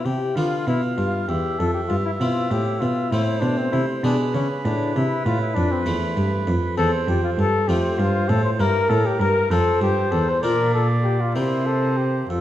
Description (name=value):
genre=classical, baroque-style sonata movement with continuo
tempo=65 BPM (dotted quarters)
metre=6/8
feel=straight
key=F major from 6.8 s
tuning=A4 = 440 Hz
part: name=mellow trumpet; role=melody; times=0.0-12.4 s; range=C4 to C5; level=-24 LUFS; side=left 4 dB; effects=none
part: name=harpsichord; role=accompaniment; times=0.0-12.4 s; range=E2 to G#4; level=-27 LUFS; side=left 1 dB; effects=none
part: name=rich cello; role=bass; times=0.0-12.4 s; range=E2 to D3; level=-22 LUFS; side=right 1 dB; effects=none
part: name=warm oboe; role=second line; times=0.4-12.4 s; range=A4 to F5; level=-28 LUFS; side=right 4 dB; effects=none
room=wet recital hall reverb, RT60 1.3 s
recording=dark, warm production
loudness=-19 LUFS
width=side -12 dB against mid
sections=0.0-12.4 A section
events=none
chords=0.4 Bdim; 1.3 C/E; 3.1 Am; 4.0 G#dim/B; 5.0 Am; 6.8 C/E; 7.7 F; 8.6 Edim/G; 9.5 F5; 10.4 Bb; 11.3 C7